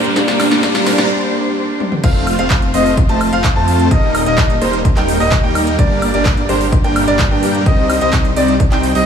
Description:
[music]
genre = EDM, festival progressive house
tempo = 128 BPM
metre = 4/4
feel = straight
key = unclear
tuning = A4 = 440 Hz
[part]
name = clear grand piano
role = accompaniment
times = 0.0-2.1 s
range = G3 to G4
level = -20 LUFS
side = left 2 dB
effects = sidechain pumping, dub echo
[part]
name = warm studio string section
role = sustained chords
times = 0.0-9.1 s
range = C3 to D6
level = -26 LUFS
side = left 2 dB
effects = none
[part]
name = dense compressed supersaw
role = riff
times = 0.0-9.1 s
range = G3 to A5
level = -17 LUFS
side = right 1 dB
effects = sidechain pumping, dub echo
[part]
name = wide detuned saw bass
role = bass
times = 0.0-9.1 s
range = Eb1 to G2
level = -20 LUFS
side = equal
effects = chorus, sidechain pumping, high-pass filter
[part]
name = big-room dance drum kit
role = drums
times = 0.0-9.0 s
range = crash cymbal, handclaps, hi-hat, snare drum, toms, woodblock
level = -21 LUFS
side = right 1 dB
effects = none
[part]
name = riser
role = sound effects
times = 0.0-1.1 s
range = none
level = -24 LUFS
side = equal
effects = none
[part]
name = electronic kick drum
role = drums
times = 0.2-8.7 s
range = none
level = -14 LUFS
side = equal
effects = high-pass filter on kick, high-pass filter on room
[part]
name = clear grand piano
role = arpeggios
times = 2.0-9.1 s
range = C5 to A5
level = -20 LUFS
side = left 1 dB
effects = sidechain pumping, dub echo
[sound]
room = light reverb, digital ambience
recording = small room ambience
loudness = -11 LUFS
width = side -7 dB against mid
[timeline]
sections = 0.0-2.0 A section; 2.0-9.1 B section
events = build-up 0.0-2.0; drum fill 0.0-1.1, 1.8; riser 0.0-1.1; break 1.1-2.0; drop 2.0-9.1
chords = 0.2 C5; 2.0 F; 3.9 Eb; 5.8 Gm; 7.7 Cm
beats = | 0.16 0.63 1.10 1.57 | 2.04 2.51 2.98 3.44 | 3.91 4.38 4.85 5.32 | 5.79 6.26 6.72 7.19 | 7.66 8.13 8.60

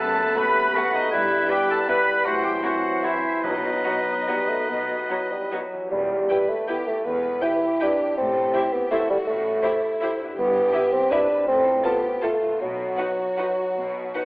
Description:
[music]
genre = classical, orchestral ballroom waltz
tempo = 136-176 BPM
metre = 3/4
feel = rubato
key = E minor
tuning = A4 = 440 Hz
[part]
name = rich studio violin section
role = melody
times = 0.0-14.2 s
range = E4 to B5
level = -31 LUFS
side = left 1 dB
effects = none
[part]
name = clear clarinet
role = second line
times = 0.0-5.5 s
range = D#4 to B4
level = -26 LUFS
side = equal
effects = none
[part]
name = clear oboe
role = second line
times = 0.0-5.7 s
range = B4 to C5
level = -26 LUFS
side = equal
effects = none
[part]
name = hollow flute section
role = second line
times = 0.0-5.5 s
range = D#5 to B5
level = -31 LUFS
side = right 1 dB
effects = none
[part]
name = dark bassoon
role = accompaniment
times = 0.0-14.2 s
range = E3 to E4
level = -23 LUFS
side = equal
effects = none
[part]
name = mellow French horn section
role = sustained chords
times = 0.0-14.2 s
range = F#3 to C5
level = -32 LUFS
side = left 1 dB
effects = none
[part]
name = concert harp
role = arpeggios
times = 0.0-14.2 s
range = F#2 to B4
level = -34 LUFS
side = equal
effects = none
[part]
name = rich studio cello section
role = bass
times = 0.0-14.1 s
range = E2 to B2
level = -38 LUFS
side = equal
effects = none
[part]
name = warm studio double bass section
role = bass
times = 0.0-14.1 s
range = E1 to B1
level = -43 LUFS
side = equal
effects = none
[part]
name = warm studio violin section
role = second line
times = 0.4-14.2 s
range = D#4 to A5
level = -33 LUFS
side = left 1 dB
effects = none
[part]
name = rich studio viola section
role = accompaniment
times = 0.4-14.2 s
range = F#3 to G4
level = -33 LUFS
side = equal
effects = none
[part]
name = timpani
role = percussion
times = 3.4-6.5 s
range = E2 to B2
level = -39 LUFS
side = equal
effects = none
[sound]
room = wet recital hall reverb, RT60 1.4 s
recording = telephone sound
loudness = -20 LUFS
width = side -22 dB against mid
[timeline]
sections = 0.0-5.9 A section; 5.9-14.2 B section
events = none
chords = 0.0 B7/F#; 1.1 Em/G; 2.3 F#m7b5/A; 3.4 B; 5.9 Em; 8.2 Am7; 10.4 Em/G; 11.5 F/A; 12.6 B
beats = 0.36 0.75 | 1.12 1.50 1.89 | 2.26 2.64 3.04 | 3.44 3.86 4.29 | 4.70 5.10 5.53 | 5.92 6.30 6.68 | 7.05 7.42 7.81 | 8.17 8.53 8.91 | 9.27 9.63 10.02 | 10.38 10.74 11.12 | 11.48 11.84 12.23 | 12.60 12.99 13.39 | 13.77 14.15

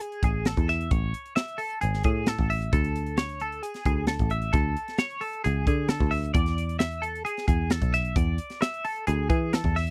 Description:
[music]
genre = math rock and midwest emo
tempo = 132 BPM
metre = 4/4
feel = straight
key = A major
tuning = A4 = 439 Hz
[part]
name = twelve-string electric guitar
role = arpeggios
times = 0.0-9.9 s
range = G#4 to E5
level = -33 LUFS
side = equal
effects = tremolo
[part]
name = crisp fusion drum kit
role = drums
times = 0.0-9.9 s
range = hi-hat, kick drum, snare drum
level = -29 LUFS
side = equal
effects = none
[part]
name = picked electric bass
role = bass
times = 0.2-9.9 s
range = G#1 to E3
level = -29 LUFS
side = equal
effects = none
[sound]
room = little or no reverb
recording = dry, close 1970s-style studio recording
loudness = -27 LUFS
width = mono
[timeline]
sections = 0.0-9.9 A section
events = none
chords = 0.0 Amaj7; 2.7 D5; 6.4 E7sus4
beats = 0.01 0.46 | 0.92 1.37 1.82 2.28 | 2.73 3.18 3.64 4.09 | 4.54 5.00 5.45 5.91 | 6.36 6.81 7.27 7.72 | 8.17 8.62 9.08 9.53

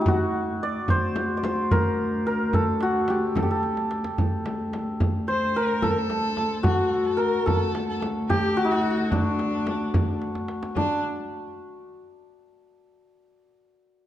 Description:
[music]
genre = Persian modal ensemble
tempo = 73 BPM (dotted quarters)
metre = 6/8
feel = straight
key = D dastgah homayun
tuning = A4 = 440 Hz
[part]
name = santur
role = melody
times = 0.0-12.0 s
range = D4 to D5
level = -26 LUFS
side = equal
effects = none
[part]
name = dark cello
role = drone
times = 0.0-10.8 s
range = D2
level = -29 LUFS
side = equal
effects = none
[part]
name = frame drum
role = percussion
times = 0.1-11.0 s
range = none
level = -30 LUFS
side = left 2 dB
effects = none
[part]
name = tombak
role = percussion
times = 0.1-11.0 s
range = none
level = -29 LUFS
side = right 2 dB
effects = none
[part]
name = rich violin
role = second line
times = 5.3-11.0 s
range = D4 to C5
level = -31 LUFS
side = left 2 dB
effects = none
[sound]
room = moderate concert hall reverb, RT60 2.0 s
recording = dark, warm production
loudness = -22 LUFS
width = side -12 dB against mid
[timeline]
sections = 0.0-10.8 A section; 10.8-12.4 B section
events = drum fill 3.6-4.2, 10.2-10.8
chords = none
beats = 0.07 | 0.89 1.71 | 2.54 3.36 | 4.18 5.01 | 5.83 6.65 | 7.48 8.30 | 9.12 9.94 | 10.77 11.59

